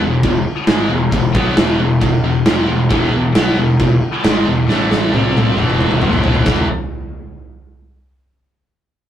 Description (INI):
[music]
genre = heavy metal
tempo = 135 BPM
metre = 4/4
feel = straight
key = unclear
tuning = A4 = 442 Hz
[part]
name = scooped high-gain guitar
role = riff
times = 0.0-6.7 s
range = E2 to C4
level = -20 LUFS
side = left 4 dB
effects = distortion
[part]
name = scooped high-gain guitar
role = riff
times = 0.0-6.6 s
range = E2 to C4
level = -20 LUFS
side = right 4 dB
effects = distortion
[part]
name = fuzz picked electric bass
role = bass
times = 0.0-6.7 s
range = E1 to C2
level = -20 LUFS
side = equal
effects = overdrive
[part]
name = big rock drum kit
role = drums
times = 0.2-6.6 s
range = crash cymbal, kick drum, snare drum, toms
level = -16 LUFS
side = equal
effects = none
[sound]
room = light reverb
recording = rough rehearsal-room recording, tube saturation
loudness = -12 LUFS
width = side -10 dB against mid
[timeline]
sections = 0.0-6.5 A section; 6.5-8.2 B section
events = drum fill 4.7-6.5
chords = 0.0 E; 4.7 A5; 5.1 C5; 5.6 E5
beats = 0.24 0.69 | 1.13 1.57 2.02 2.46 | 2.91 3.35 3.80 4.24 | 4.69 5.13 5.58 6.02 | 6.46